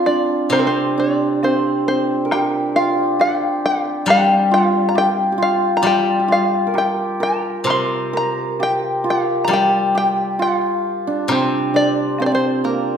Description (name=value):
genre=chinese traditional, Chinese chamber ensemble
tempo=67 BPM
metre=2/4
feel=rubato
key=C shang mode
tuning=A4 = 440 Hz
part: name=open-back banjo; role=melody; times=0.0-13.0 s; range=Bb4 to C6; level=-20 LUFS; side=left 2 dB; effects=none
part: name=hammered dulcimer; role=second line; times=0.0-13.0 s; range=Bb3 to C5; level=-18 LUFS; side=right 2 dB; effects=none
part: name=steel-string zither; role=accompaniment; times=0.5-13.0 s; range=C3 to G3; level=-22 LUFS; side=left 2 dB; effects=none
part: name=woodblock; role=percussion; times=0.5-12.4 s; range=none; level=-30 LUFS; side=left 3 dB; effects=none
room=wet recital hall reverb, RT60 1.4 s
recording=none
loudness=-15 LUFS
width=side -8 dB against mid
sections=0.5-13.0 A section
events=none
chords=none